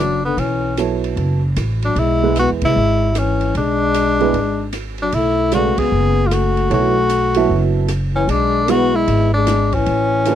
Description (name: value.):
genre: modal jazz.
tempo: 152 BPM.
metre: 4/4.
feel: swing 65% on 8ths.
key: unclear.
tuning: A4 = 437 Hz.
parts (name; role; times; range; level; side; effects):
warm tenor saxophone; melody; 0.0-10.3 s; B3 to G#4; -18 LUFS; equal; none.
breathy trombone; second line; 0.0-10.3 s; D3 to B3; -21 LUFS; left 12 dB; none.
upright bass; bass; 0.0-10.3 s; F#1 to E2; -20 LUFS; equal; none.
open jazz drum kit; drums; 0.4-10.3 s; hi-hat, kick drum, ride cymbal, rim click, snare drum; -29 LUFS; right 2 dB; none.
warm baby grand piano; accompaniment; 0.8-10.3 s; C#3 to E5; -19 LUFS; right 10 dB; none.
room: little or no reverb.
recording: dry, close 1970s-style studio recording.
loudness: -14 LUFS.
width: side -10 dB against mid.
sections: 0.0-10.3 A section.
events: band accent 2.6, 5.7.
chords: 0.0 Bm11; 2.0 E; 5.1 Bm11; 8.3 E/B.